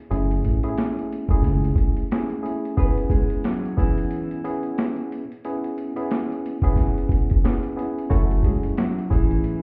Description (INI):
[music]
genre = hip hop, boom-bap hip-hop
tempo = 90 BPM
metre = 4/4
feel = swing 58% on 16ths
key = F# minor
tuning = A4 = 440 Hz
[part]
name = barky tine electric piano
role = accompaniment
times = 0.1-9.6 s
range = F#3 to G#4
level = -29 LUFS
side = equal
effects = none
[part]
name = deep dub fingered electric bass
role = bass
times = 0.1-1.7, 8.1-9.4 s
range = F#1 to C#2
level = -24 LUFS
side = equal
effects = none
[part]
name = boom bap sampler-style drum kit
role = drums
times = 0.1-9.6 s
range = hi-hat, kick drum, snare drum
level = -24 LUFS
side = equal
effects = none
[part]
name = nylon-string guitar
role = melody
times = 2.8-9.6 s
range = E3 to B4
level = -31 LUFS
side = equal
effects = delay
[sound]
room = light reverb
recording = heard muffled through a wall, club reverb, vinyl crackle, EQ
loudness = -23 LUFS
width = mono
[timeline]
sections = 0.0-9.6 A section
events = none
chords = 0.0 F#m7; 2.8 C#m7/E; 8.1 F#m7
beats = | 0.11 0.78 1.44 2.11 | 2.77 3.44 4.11 4.78 | 5.44 6.11 6.78 7.44 | 8.11 8.78 9.44